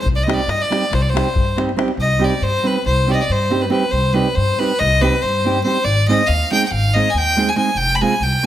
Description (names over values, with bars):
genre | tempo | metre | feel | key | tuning
balkan folk, Balkan wedding band | 279 BPM (eighths) | 9/8 | straight | C harmonic minor | A4 = 440 Hz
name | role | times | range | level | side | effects
bright fiddle | melody | 0.0-8.5 s | B4 to B5 | -18 LUFS | left 1 dB | none
upright bass | bass | 0.0-8.3 s | F1 to G2 | -20 LUFS | equal | none
davul | percussion | 0.1-1.9 s | none | -22 LUFS | left 2 dB | none
nylon-string guitar | accompaniment | 0.3-8.5 s | G3 to Ab4 | -21 LUFS | right 3 dB | none
room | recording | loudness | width
light reverb | none | -14 LUFS | side -12 dB against mid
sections
0.0-2.0 A section; 2.0-8.5 A section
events
none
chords
0.0 Cm; 5.8 Ab; 7.8 Fm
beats
| 0.04 0.25 0.47 0.69 0.90 1.12 1.33 1.55 1.76 | 1.98 2.19 2.41 2.63 2.84 3.06 3.27 3.49 3.70 | 3.92 4.13 4.35 4.56 4.78 4.99 5.20 5.42 5.63 | 5.85 6.06 6.27 6.49 6.70 6.92 7.13 7.34 7.55 | 7.77 7.98 8.19 8.40